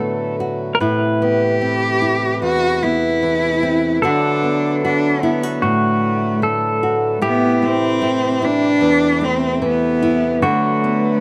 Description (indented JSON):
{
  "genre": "acoustic folk-pop ballad",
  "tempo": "75 BPM",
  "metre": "4/4",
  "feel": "straight",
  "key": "A dorian",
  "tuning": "A4 = 439 Hz",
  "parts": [
    { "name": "pedal steel guitar", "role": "second line", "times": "0.0-11.2 s", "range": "F#4 to B4", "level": "-24 LUFS", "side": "equal", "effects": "slapback echo" },
    { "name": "nylon-string guitar", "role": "accompaniment", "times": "0.0-11.2 s", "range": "E2 to F#4", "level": "-22 LUFS", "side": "equal", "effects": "none" },
    { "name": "pedal harmonium", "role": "sustained chords", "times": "0.0-11.2 s", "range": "C3 to B4", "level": "-28 LUFS", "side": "equal", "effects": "none" },
    { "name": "rich cello", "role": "melody", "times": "1.2-11.2 s", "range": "A3 to G4", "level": "-20 LUFS", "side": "equal", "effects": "none" }
  ],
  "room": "little or no reverb",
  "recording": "recorded outdoors, with no room sound",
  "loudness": "-17 LUFS",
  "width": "mono",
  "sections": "0.0-11.2 A section",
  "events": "none",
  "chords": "0.0 D6; 0.8 Amadd9; 4.0 D6; 7.2 Amadd9; 10.4 D6"
}